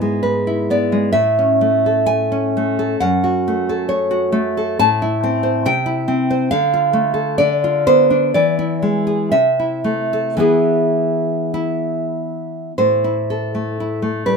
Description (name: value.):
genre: romantic piece for solo classical guitar.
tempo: 45-72 BPM.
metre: 2/4.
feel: rubato.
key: A minor from 4.8 s.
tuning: A4 = 437 Hz.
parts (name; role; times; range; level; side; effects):
nylon-string guitar; solo; 0.0-14.4 s; F#2 to A5; -15 LUFS; equal; none.
room: light reverb.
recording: minimal, uncompressed stereo recording.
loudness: -15 LUFS.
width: side -5 dB against mid.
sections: 0.0-12.8 A section; 12.8-14.4 B section.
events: none.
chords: 0.0 E7/G#; 1.2 A; 3.0 F#m; 4.8 Am; 5.7 C; 6.5 Dm; 7.4 Bdim/D; 8.3 E; 9.3 Am/C; 10.4 E; 12.8 Am.